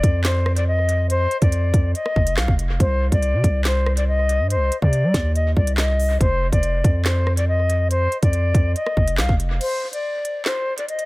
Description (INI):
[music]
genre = hip hop, drill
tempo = 141 BPM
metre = 4/4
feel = half-time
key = unclear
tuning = A4 = 442 Hz
[part]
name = silver concert flute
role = melody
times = 0.0-11.1 s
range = C5 to F5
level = -23 LUFS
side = left 2 dB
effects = low-pass filter, dub echo
[part]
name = long sustained 808-style bass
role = bass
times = 0.0-9.6 s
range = F1 to G3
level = -20 LUFS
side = equal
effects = none
[part]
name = drill drum kit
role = drums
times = 0.0-11.1 s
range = crash cymbal, handclaps, hi-hat, kick drum, rim click, snare drum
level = -21 LUFS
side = equal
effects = none
[sound]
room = little or no reverb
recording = echo-heavy mix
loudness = -17 LUFS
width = side -21 dB against mid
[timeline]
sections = 0.0-9.6 A section; 9.6-11.1 B section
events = break 9.6-11.1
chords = 0.0 F5; 2.8 Cm; 6.2 F5; 9.6 N.C.